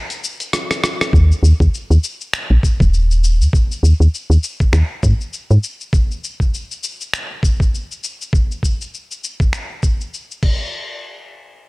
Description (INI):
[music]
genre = organic downtempo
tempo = 100 BPM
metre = 4/4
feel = swing 57% on 16ths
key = unclear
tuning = A4 = 440 Hz
[part]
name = dusty soul sampler-style drum kit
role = drums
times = 0.1-10.6 s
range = crash cymbal, finger snaps, hi-hat, rim click, shaker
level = -24 LUFS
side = left 1 dB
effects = none
[part]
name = woody FM bass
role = bass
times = 1.1-5.6 s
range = Eb1 to Ab2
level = -11 LUFS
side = equal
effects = sidechain pumping
[part]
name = electronic kick drum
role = drums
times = 1.1-10.6 s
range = none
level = -15 LUFS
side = equal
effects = none
[sound]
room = little or no reverb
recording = dry, gritty hardware recording, transformer saturation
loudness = -14 LUFS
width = side -25 dB against mid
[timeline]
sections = 0.0-1.1 A section; 1.1-10.7 B section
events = break 0.0-1.1; drum fill 0.5-1.1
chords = none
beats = 0.53 | 1.13 1.73 2.33 2.93 | 3.53 4.13 4.73 5.33 | 5.93 6.53 7.13 7.73 | 8.33 8.93 9.53 10.13